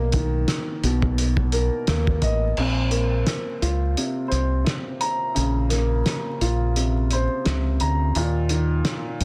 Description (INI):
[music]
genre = hip hop, boom-bap hip-hop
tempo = 86 BPM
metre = 4/4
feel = swing 57% on 16ths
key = unclear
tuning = A4 = 441 Hz
[part]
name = dark upright piano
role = accompaniment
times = 0.0-9.2 s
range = Bb2 to Bb5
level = -28 LUFS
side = equal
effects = high-pass filter, low-pass filter
[part]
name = deep dub fingered electric bass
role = bass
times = 0.0-9.2 s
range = A1 to F2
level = -24 LUFS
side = equal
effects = none
[part]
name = cloth-damped thuddy drum kit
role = drums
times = 0.1-9.2 s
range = crash cymbal, hi-hat, kick drum, rim click, snare drum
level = -28 LUFS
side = equal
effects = none
[sound]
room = little or no reverb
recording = dense, heavily limited modern master, vinyl crackle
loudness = -23 LUFS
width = mono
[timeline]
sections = 0.0-2.6 A section; 2.6-9.2 B section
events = kick muted 2.6-9.2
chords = 0.0 Bmaj7; 2.6 Bbmadd9; 8.2 Eb5